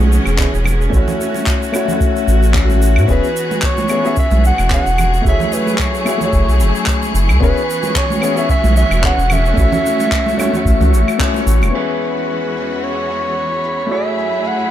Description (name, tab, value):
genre	sunset chillout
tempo	111 BPM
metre	4/4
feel	swing 55% on 16ths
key	E major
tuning	A4 = 440 Hz
part	bright studio string section	sustained chords	0.0-14.7 s	E2 to G#4	-22 LUFS	equal	none
part	round analog bass	bass	0.0-11.7 s	E1 to A2	-13 LUFS	equal	tube saturation
part	jazz brush drum kit	drums	0.1-14.7 s	claves, crash cymbal, handclaps, shaker	-24 LUFS	equal	low-pass filter on cymbals, low-pass filter on perc, low-pass filter on snare, low-pass filter on room
part	warm concert grand piano	accompaniment	0.4-14.7 s	A3 to E5	-20 LUFS	moving between left 10 dB and right 3 dB	auto-pan, low-pass filter, tape echo
part	electronic kick drum	drums	0.4-11.3 s	none	-18 LUFS	equal	none
part	congas	percussion	0.6-11.7 s	none	-24 LUFS	right 5 dB	none
part	breathy soprano saxophone	melody	3.1-14.7 s	B4 to F#5	-20 LUFS	right 1 dB	tape echo
part	wind-like tuned noise texture	texture	4.3-14.7 s	B5 to C#6	-29 LUFS	right 1 dB	built-in reverb
room	light reverb, small room ambience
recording	none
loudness	-13 LUFS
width	side -11 dB against mid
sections	0.0-11.7 A section; 11.7-14.7 B section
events	band accent 11.2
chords	0.0 E6; 0.9 A6; 3.1 E6; 5.3 F#m9; 7.4 E6; 9.6 A6; 11.7 E6; 13.9 F#m9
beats	0.39 | 0.93 1.47 2.01 2.55 | 3.09 3.63 4.17 4.71 | 5.25 5.79 6.33 6.88 | 7.42 7.96 8.50 9.04 | 9.58 10.12 10.66 11.20 | 11.74 12.28 12.82 13.36 | 13.90 14.44